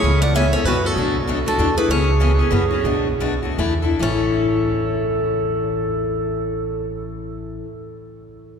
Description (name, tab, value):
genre	acoustic string swing (jazz manouche)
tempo	136-194 BPM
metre	3/4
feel	swing 58% on 8ths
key	A major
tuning	A4 = 440 Hz
part	picked steel-string acoustic guitar	melody	0.0-7.6 s	A4 to F#5	-25 LUFS	equal	none
part	breathy clarinet	second line	0.0-7.4 s	F#4 to D5	-24 LUFS	right 3 dB	none
part	picked steel-string acoustic guitar	accompaniment	0.0-7.7 s	A2 to A4	-23 LUFS	left 4 dB	none
part	upright bass	bass	0.0-7.6 s	A1 to F#2	-22 LUFS	equal	none
room	wet cathedral reverb, RT60 6.9 s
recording	recorded in a church or concert hall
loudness	-17 LUFS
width	side -6 dB against mid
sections	0.0-4.0 A section; 4.0-6.7 B section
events	slowing down 1.9-4.0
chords	0.0 C#m7; 0.6 F#7sus4; 1.0 Bm7; 1.6 E9sus4; 1.9 C#m7; 2.5 F#7sus4; 2.9 Bm9; 3.6 E7sus4; 4.0 A